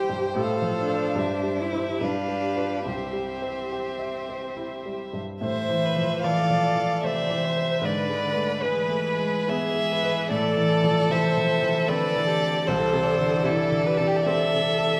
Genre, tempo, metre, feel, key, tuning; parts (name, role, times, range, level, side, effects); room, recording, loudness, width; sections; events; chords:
classical, slow romantic movement for piano quintet; 67-80 BPM; 3/4; rubato; C major, A minor from 5.4 s; A4 = 439 Hz
rich violin; melody; 0.0-15.0 s; G4 to G5; -30 LUFS; equal
rich cello; second line; 0.0-15.0 s; C3 to G4; -33 LUFS; equal
rich violin; second line; 0.0-15.0 s; G#4 to D5; -32 LUFS; equal
clear baby grand piano; accompaniment; 0.0-15.0 s; C2 to E5; -31 LUFS; equal
rich viola; accompaniment; 0.0-15.0 s; E4 to D5; -32 LUFS; equal
wet recital hall reverb, RT60 1.4 s; -25 LUFS; mono
0.0-5.4 A section; 5.4-15.0 B section
0.4 F/A; 1.2 C/G; 2.0 G7; 2.9 C; 5.4 Am; 7.8 E7/G#; 10.3 Am; 12.7 Am/C